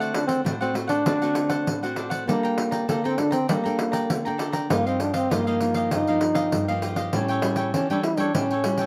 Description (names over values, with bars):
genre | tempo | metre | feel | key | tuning
samba and choro | 99 BPM | 4/4 | straight | G minor | A4 = 439 Hz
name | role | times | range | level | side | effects
warm trombone | melody | 0.0-8.9 s | A3 to E4 | -27 LUFS | equal | none
cavaquinho | accompaniment | 0.0-8.9 s | D4 to Bb5 | -32 LUFS | equal | none
nylon-string guitar | accompaniment | 0.0-8.9 s | G2 to A4 | -31 LUFS | equal | none
pandeiro | percussion | 0.0-8.9 s | none | -31 LUFS | equal | none
room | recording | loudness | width
light reverb | close, detailed microphones | -24 LUFS | mono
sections
0.0-8.9 A section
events
none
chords
0.0 D7; 2.3 Gmadd9; 4.7 Ebadd9/G; 7.1 A7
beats
0.45 1.05 1.66 | 2.27 2.88 3.49 4.10 | 4.70 5.31 5.92 6.53 | 7.13 7.74 8.35